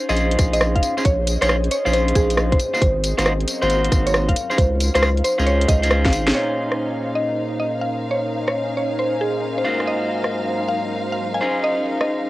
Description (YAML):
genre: UK garage, two-step garage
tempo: 136 BPM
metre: 4/4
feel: swing 67% on 16ths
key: Bb minor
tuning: A4 = 438 Hz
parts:
  - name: ethereal airy pad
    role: texture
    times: 0.0-12.3 s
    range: Gb3 to Ab5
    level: -28 LUFS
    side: left 1 dB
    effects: ensemble chorus, built-in reverb, sidechain pumping, cassette tape
  - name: mallet-like synth pluck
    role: melody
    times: 0.1-12.2 s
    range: Ab4 to Ab5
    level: -23 LUFS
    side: equal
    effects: chorus, cassette tape, tape echo
  - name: electric guitar at the edge of break-up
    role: stabs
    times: 0.1-12.3 s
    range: Ab2 to C5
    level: -24 LUFS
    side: equal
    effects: low-pass filter, cassette tape, tape echo
  - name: saturated sub bass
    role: bass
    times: 0.1-6.3 s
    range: Eb1 to Db2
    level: -21 LUFS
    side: equal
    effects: sidechain pumping
  - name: garage drum kit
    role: drums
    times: 0.1-12.1 s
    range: hi-hat, rim click, snare drum, tambourine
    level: -22 LUFS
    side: equal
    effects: overdrive
  - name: electronic kick drum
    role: drums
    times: 0.4-6.1 s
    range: none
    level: -19 LUFS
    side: equal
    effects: none
  - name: warm symphonic violin section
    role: sustained chords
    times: 6.3-12.3 s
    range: Eb4 to F5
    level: -29 LUFS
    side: equal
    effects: sidechain pumping, cassette tape
room: light reverb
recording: home recording on cassette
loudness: -17 LUFS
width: side -17 dB against mid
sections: 0.0-6.3 A section; 6.3-12.3 B section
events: drum fill 6.0-6.3; band accent 6.2; filter sweep on clean electric guitar 6.3-12.3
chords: 0.0 Bbm11; 2.6 Ab13; 4.4 Dbmaj9; 6.3 Bbm11; 9.7 Ab13; 11.4 Dbmaj9